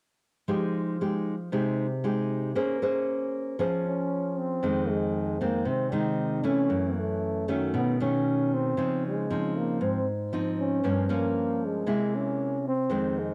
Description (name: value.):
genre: bossa nova.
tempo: 116 BPM.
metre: 4/4.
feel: straight.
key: F minor.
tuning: A4 = 440 Hz.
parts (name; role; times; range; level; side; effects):
nylon-string guitar; accompaniment; 0.5-13.3 s; F2 to C5; -30 LUFS; equal; cassette tape.
breathy trombone; melody; 3.9-13.3 s; Gb3 to Eb4; -31 LUFS; equal; cassette tape, plate reverb.
room: wet booth ambience, RT60 0.2 s.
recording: home recording on cassette.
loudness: -28 LUFS.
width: mono.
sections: 0.5-4.6 A section; 4.6-13.3 B section.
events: none.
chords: 0.5 Fm9; 2.6 Bbm9; 4.6 Fm7; 6.7 Gbm7; 7.7 B9; 8.8 Dbmaj9; 10.8 Gm7b5; 11.9 C7b13.